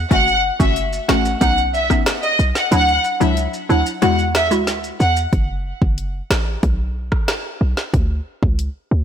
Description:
dancehall; 92 BPM; 4/4; straight; F# minor; A4 = 437 Hz
short 808-style bass; bass; 0.0-9.0 s; F#1 to E2; -20 LUFS; equal
rich studio violin section; melody; 0.1-5.1 s; D#5 to F#5; -18 LUFS; equal; digital delay
hollow square pluck; accompaniment; 0.1-4.7 s; F#3 to F#4; -21 LUFS; left 2 dB; chorus, sidechain pumping
deep house drum kit; drums; 0.1-8.7 s; hi-hat, kick drum, rim click, snare drum; -20 LUFS; equal; soft clipping on snare
maracas; percussion; 0.1-5.3 s; -34 LUFS; right 1 dB
light reverb, digital ambience; blown-out, overdriven recording, overdrive; -16 LUFS; side -9 dB against mid
0.0-5.3 A section; 5.3-9.0 B section
kick muted 2.7-5.3
0.1 F#m; 1.4 Badd9; 2.7 Dadd9; 4.0 Eadd9; 5.3 F#m; 6.6 N.C.

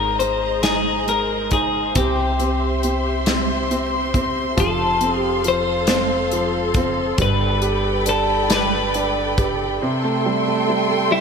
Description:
six-eight pop ballad; 46 BPM (dotted quarters); 6/8; straight; C major; A4 = 440 Hz
twelve-string electric guitar; melody; 0.0-11.2 s; E4 to C5; -22 LUFS; left 2 dB
clear grand piano; accompaniment; 0.0-11.2 s; C3 to G4; -23 LUFS; right 2 dB; slapback echo
warm studio string section; sustained chords; 0.0-11.2 s; G4 to C6; -24 LUFS; left 1 dB
upright bass; bass; 0.0-9.8 s; F1 to C2; -26 LUFS; equal
modern studio drum kit; drums; 0.2-9.6 s; hi-hat, kick drum, snare drum; -24 LUFS; equal
moderate lush hall reverb, RT60 3.3 s; big arena sound; -17 LUFS; side -6 dB against mid
0.0-9.8 A section; 9.8-11.2 B section
0.0 Abadd9; 2.0 C; 4.6 F; 7.2 Gadd9; 9.8 C6

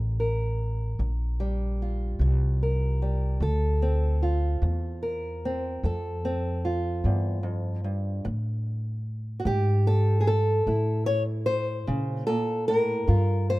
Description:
acoustic country blues, solo or duo; 50 BPM (dotted quarters); 12/8; straight; D minor; A4 = 439 Hz
fingerpicked old ladder-braced acoustic guitar; melody; 0.0-13.6 s; D2 to C#5; -28 LUFS; equal
upright bass; bass; 0.0-13.6 s; A1 to Bb2; -26 LUFS; equal
little or no reverb; rough home demo mix; -24 LUFS; side -19 dB against mid
0.0-13.6 A section
0.0 Gm7; 3.4 Dm7; 8.2 A5; 13.1 Gm7

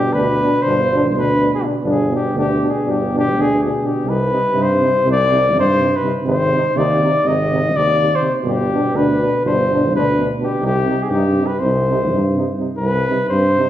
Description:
balkan folk, Balkan brass band; 246 BPM (eighths); 9/8; straight; C harmonic minor; A4 = 438 Hz
mellow cornet; melody; 0.0-13.7 s; G4 to Eb5; -18 LUFS; left 1 dB
mellow euphonium; accompaniment; 0.0-13.7 s; B2 to C3; -23 LUFS; right 3 dB
warm trombone; accompaniment; 0.0-13.7 s; D4 to Eb4; -23 LUFS; left 1 dB
clear tuba; bass; 0.1-13.6 s; G1 to G2; -20 LUFS; equal
wet recital hall reverb, RT60 1.4 s; heard from further back in the room; -14 LUFS; side -12 dB against mid
0.0-12.8 A section
0.0 G; 4.0 Cm; 6.2 Ab; 8.4 G; 10.6 Cm

